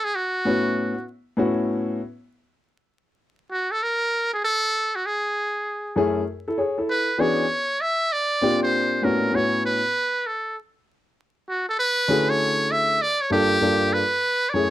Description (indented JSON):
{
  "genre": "hip hop",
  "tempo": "98 BPM",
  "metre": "4/4",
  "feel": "swing 66% on 16ths",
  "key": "unclear",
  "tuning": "A4 = 439 Hz",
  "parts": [
    { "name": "trumpet with metal mute", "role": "melody", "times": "0.0-14.7 s", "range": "F#4 to E5", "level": "-22 LUFS", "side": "right 1 dB", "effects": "none" },
    { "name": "warm grand piano", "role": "accompaniment", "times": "0.5-2.0, 6.0-14.7 s", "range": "F#2 to C#5", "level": "-22 LUFS", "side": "left 1 dB", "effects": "none" }
  ],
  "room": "light reverb",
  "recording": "vinyl crackle",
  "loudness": "-20 LUFS",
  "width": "side -13 dB against mid",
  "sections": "0.0-14.2 A section",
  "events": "muted trumpet solo 0.0-14.2; break 2.0-4.4",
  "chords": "0.0 A69; 2.0 N.C.; 4.4 F#m9; 6.9 E13; 8.7 A#69; 9.3 A69; 11.8 Dmaj9#11; 13.6 Gm9"
}